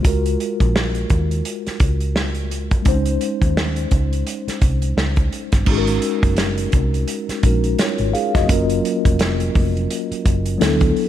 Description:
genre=lush 1970s-style soul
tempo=85 BPM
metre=4/4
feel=swing 58% on 16ths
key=unclear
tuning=A4 = 440 Hz
part: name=mellow tine electric piano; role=accompaniment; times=0.0-11.1 s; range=Gb3 to F5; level=-22 LUFS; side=left 2 dB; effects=medium stereo tremolo
part: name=hollow-body short-scale fingered electric bass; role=bass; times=0.0-10.9 s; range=F1 to Eb2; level=-21 LUFS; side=equal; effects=none
part: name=warm soul drum kit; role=drums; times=0.0-11.1 s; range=crash cymbal, hi-hat, kick drum, snare drum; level=-19 LUFS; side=equal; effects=none
room=studio reverb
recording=none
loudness=-16 LUFS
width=side -11 dB against mid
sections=0.0-5.7 A section; 5.7-11.1 B section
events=none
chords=0.1 Gbmaj9; 2.9 Abadd11; 5.7 Ab9sus4; 8.5 Gbmaj7

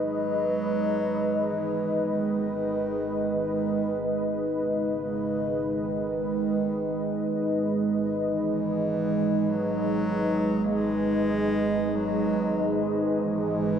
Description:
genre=ambient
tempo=49 BPM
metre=4/4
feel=straight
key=G# minor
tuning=A4 = 440 Hz
part: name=mellow bass clarinet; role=melody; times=0.0-13.8 s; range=C#3 to A#3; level=-33 LUFS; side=equal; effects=tape echo
part: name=dark analog pad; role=sustained chords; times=0.0-13.8 s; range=G#3 to D#5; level=-25 LUFS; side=right 1 dB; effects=chorus
part: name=overtone-sweeping drone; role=drone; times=0.3-13.8 s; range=G#1 to G#2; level=-40 LUFS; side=equal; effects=chorus, built-in reverb
room=wet cathedral reverb, RT60 5.0 s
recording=in a vast, echoing space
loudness=-24 LUFS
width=side -8 dB against mid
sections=0.0-13.8 A section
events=fade-in on synth drone 0.0-13.8; fade-in on bass clarinet 0.0-13.8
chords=0.0 G#m

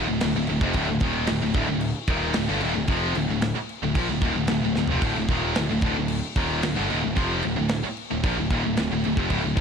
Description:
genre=heavy metal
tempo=112 BPM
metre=4/4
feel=straight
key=D minor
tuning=A4 = 440 Hz
part: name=distorted electric guitar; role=riff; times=0.0-9.6 s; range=D2 to F3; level=-28 LUFS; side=left 11 dB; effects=overdrive
part: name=heavy high-gain guitar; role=riff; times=0.0-9.6 s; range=D2 to F3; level=-29 LUFS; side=right 12 dB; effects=distortion
part: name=heavy high-gain guitar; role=riff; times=0.0-9.6 s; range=D2 to F3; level=-30 LUFS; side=right 1 dB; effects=distortion
part: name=fuzz picked electric bass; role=bass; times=0.0-9.6 s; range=D1 to Bb1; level=-29 LUFS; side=right 1 dB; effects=overdrive
part: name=tight metal drum kit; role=drums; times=0.2-9.6 s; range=crash cymbal, kick drum, snare drum, toms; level=-28 LUFS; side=equal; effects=none
room=studio reverb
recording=dark, warm production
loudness=-22 LUFS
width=side -6 dB against mid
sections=0.0-9.6 A section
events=drum fill 4.8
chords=0.0 Dm

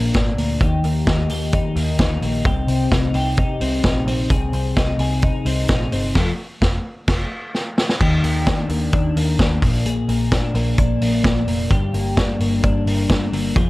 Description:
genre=jangly indie pop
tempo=130 BPM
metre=4/4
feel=straight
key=unclear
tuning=A4 = 440 Hz
part: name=twelve-string electric guitar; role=arpeggios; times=0.0-13.7 s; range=G2 to Bb4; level=-21 LUFS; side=left 2 dB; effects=analog chorus, slapback echo
part: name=vintage muted picked electric bass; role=bass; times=0.0-13.7 s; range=F1 to Eb2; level=-23 LUFS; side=equal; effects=none
part: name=vintage drum kit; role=drums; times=0.1-13.7 s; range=crash cymbal, hi-hat, kick drum, snare drum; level=-20 LUFS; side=equal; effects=none
room=light reverb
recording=dark, warm production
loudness=-17 LUFS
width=side -19 dB against mid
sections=0.0-8.0 A section; 8.0-13.7 B section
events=band accent 6.2-8.0; drum fill 7.5-8.0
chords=0.0 Bb; 0.6 Eb; 2.5 Cm; 4.3 Ab/C; 6.2 N.C.; 8.0 Ebmaj7; 9.6 Bb7; 11.7 Gm

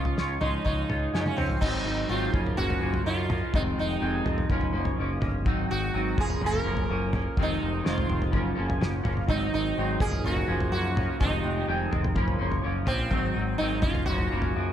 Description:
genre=psychedelic rock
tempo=125 BPM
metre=4/4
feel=straight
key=unclear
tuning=A4 = 438 Hz
part: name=sitar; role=melody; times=0.0-14.7 s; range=C4 to Bb4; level=-31 LUFS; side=right 2 dB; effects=analog delay
part: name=semi-hollow electric guitar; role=riff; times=0.0-14.7 s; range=F2 to Db5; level=-29 LUFS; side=equal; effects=flanger, double-tracked left and right
part: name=growling picked electric bass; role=bass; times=0.0-14.7 s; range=F1 to Gb2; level=-31 LUFS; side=equal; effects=overdrive
part: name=cloth-damped thuddy drum kit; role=drums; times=0.1-14.5 s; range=crash cymbal, kick drum, snare drum, toms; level=-29 LUFS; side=equal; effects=none
room=light reverb, small room ambience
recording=none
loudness=-24 LUFS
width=side -10 dB against mid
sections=0.0-1.6 A section; 1.6-14.7 B section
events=drum fill 1.1-1.6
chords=0.0 Db; 1.6 Ab7; 2.3 Gbmaj7; 3.5 Fm7; 4.5 Gbmaj7; 5.5 Ab7; 6.2 Gbmaj7; 7.4 Fm7; 8.3 Gbmaj7; 9.3 Ab7; 10.0 Gbmaj7; 11.2 Fm7; 12.2 Gbmaj7; 13.1 Ab7; 13.8 Gbmaj7

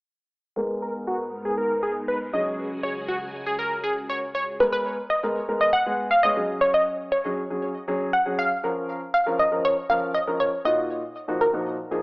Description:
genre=pop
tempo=119 BPM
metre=4/4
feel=straight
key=unclear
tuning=A4 = 439 Hz
part: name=dark baby grand piano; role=accompaniment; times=0.6-12.0 s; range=Bb2 to Db5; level=-28 LUFS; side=equal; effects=low-pass filter, cassette tape
part: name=string machine, violins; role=sustained chords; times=0.6-4.6 s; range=Db2 to Bb4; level=-34 LUFS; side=equal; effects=ensemble chorus, low-pass filter, cassette tape
part: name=plucky unison lead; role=melody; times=0.8-4.4 s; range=Gb4 to Eb5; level=-27 LUFS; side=equal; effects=low-pass filter, cassette tape, tape echo
part: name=wide unison pluck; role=melody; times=4.6-12.0 s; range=Bb4 to Gb5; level=-22 LUFS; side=equal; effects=cassette tape, tape echo
room=wet spring reverb, RT60 1.4 s, digital ambience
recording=home recording on cassette, AM radio sound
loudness=-22 LUFS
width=side -29 dB against mid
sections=0.6-4.6 A section; 4.6-12.0 B section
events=filter sweep 0.6-4.6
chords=0.6 Abmadd9; 2.3 Dbsus4; 4.6 Abmadd9; 6.4 Dbsus4; 8.6 Bbm; 10.7 Ebmadd9/Bb

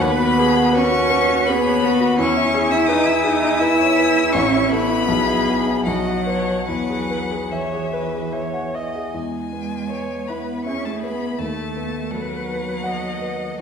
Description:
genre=classical, slow romantic movement for piano quartet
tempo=71-86 BPM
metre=3/4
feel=rubato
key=E major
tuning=A4 = 437 Hz
part: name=rich violin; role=melody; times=0.0-13.6 s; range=E5 to E6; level=-24 LUFS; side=left 6 dB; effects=none
part: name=rich cello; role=second line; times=0.0-13.6 s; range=E3 to E4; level=-21 LUFS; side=right 1 dB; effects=none
part: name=dark baby grand piano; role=accompaniment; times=0.0-13.6 s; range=A1 to F#5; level=-22 LUFS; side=left 2 dB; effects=none
part: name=rich viola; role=accompaniment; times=0.0-13.6 s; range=E4 to D#5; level=-26 LUFS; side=right 2 dB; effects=none
room=wet recital hall reverb, RT60 1.4 s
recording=heard from further back in the room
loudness=-17 LUFS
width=side -6 dB against mid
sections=0.0-9.1 A section; 9.1-13.6 B section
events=none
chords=0.0 B/D#; 2.2 E; 4.3 A; 5.1 E/B; 5.9 B; 6.7 E; 11.4 B7/D#

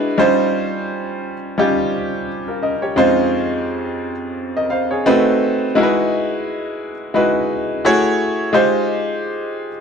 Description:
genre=soul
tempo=86 BPM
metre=4/4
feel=swing 58% on 16ths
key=unclear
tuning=A4 = 440 Hz
part: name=clear grand piano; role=solo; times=0.0-9.8 s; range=F2 to F5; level=-16 LUFS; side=equal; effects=none
room=moderate studio reverb, RT60 0.5 s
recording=band playing live in one room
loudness=-16 LUFS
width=side -6 dB against mid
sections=0.0-9.8 A section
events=none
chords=0.2 Eb13; 3.0 Dbmaj9/F; 5.1 B7b9; 5.8 Emaj9; 7.8 Gbm9; 8.5 Fm9

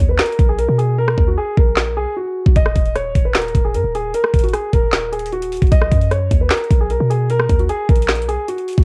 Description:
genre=hip hop, trap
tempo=152 BPM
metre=4/4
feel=half-time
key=unclear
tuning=A4 = 440 Hz
part: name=dark concert grand piano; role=melody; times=0.0-8.8 s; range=F#4 to Eb5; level=-23 LUFS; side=equal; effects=low-pass filter, analog delay
part: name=warm 808-style bass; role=bass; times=0.0-8.8 s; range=Eb1 to B2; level=-22 LUFS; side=equal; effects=none
part: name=trap drum kit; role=drums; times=0.2-8.8 s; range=handclaps, hi-hat, kick drum, rim click, snare drum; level=-18 LUFS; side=equal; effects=cassette tape
room=little or no reverb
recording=home recording on cassette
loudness=-17 LUFS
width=mono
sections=0.0-8.8 A section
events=hi-hats muted 1.0-2.6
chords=0.0 Bmaj7; 2.6 Eb5; 5.7 Bmaj7

